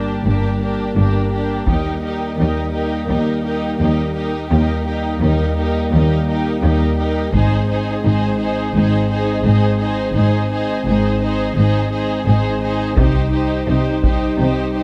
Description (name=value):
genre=cinematic, epic orchestral film score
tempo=85 BPM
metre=4/4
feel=straight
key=unclear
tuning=A4 = 440 Hz
part: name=dark symphonic violin section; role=melody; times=0.0-14.8 s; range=Bb4 to C5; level=-30 LUFS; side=equal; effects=none
part: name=warm symphonic violin section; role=second line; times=0.0-14.8 s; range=G4 to Ab4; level=-29 LUFS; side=equal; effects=none
part: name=warm symphonic viola section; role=accompaniment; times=0.0-14.8 s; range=D4 to Eb4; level=-27 LUFS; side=equal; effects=none
part: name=mellow French horn section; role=sustained chords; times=0.0-14.8 s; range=G3 to Eb4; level=-25 LUFS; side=equal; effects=none
part: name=rich symphonic double bass section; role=bass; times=0.0-14.8 s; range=G1 to Eb2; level=-23 LUFS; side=equal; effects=none
part: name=warm symphonic cello section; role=bass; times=0.0-14.8 s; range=Eb2 to C3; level=-23 LUFS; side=equal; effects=none
part: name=taiko ensemble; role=drums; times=1.7-3.0, 7.3-8.7, 13.0-14.7 s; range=none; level=-21 LUFS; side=equal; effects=none
room=light reverb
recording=close, detailed microphones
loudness=-18 LUFS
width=mono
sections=0.0-14.8 A section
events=build-up 0.0-14.8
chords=0.0 Gm; 1.7 Eb; 7.3 Ab; 13.0 Cm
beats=0.27 0.98 | 1.68 2.39 3.10 3.80 | 4.51 5.21 5.92 6.62 | 7.33 8.04 8.74 9.45 | 10.15 10.86 11.57 12.27 | 12.98 13.68 14.39